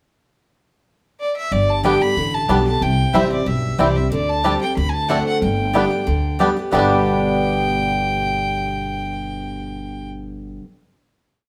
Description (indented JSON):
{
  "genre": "bluegrass",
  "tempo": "184 BPM",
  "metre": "4/4",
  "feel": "straight",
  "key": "G major",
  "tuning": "A4 = 439 Hz",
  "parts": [
    { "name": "clear fiddle", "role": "melody", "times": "1.2-10.1 s", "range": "D5 to B5", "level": "-25 LUFS", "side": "equal", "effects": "none" },
    { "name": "picked steel-string acoustic guitar", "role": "accompaniment", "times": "1.5-10.6 s", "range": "G2 to G4", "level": "-24 LUFS", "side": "equal", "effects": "none" },
    { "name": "upright bass", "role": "bass", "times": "1.5-10.6 s", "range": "G1 to D2", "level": "-26 LUFS", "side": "equal", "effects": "none" },
    { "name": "bluegrass banjo", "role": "arpeggios", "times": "1.8-10.6 s", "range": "G3 to G4", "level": "-24 LUFS", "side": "equal", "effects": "none" },
    { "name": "mandolin", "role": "stabs", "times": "1.8-10.6 s", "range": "B3 to A5", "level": "-27 LUFS", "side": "equal", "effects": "none" }
  ],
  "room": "wet studio reverb, RT60 0.9 s",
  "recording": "band playing live in one room",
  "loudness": "-19 LUFS",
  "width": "mono",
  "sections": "0.2-1.5 pickup bar; 1.5-6.7 A section; 6.7-9.3 final chord",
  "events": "none",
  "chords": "0.2 N.C.; 1.5 Gadd9; 2.8 C; 4.1 D7sus4; 4.8 D7; 5.4 G"
}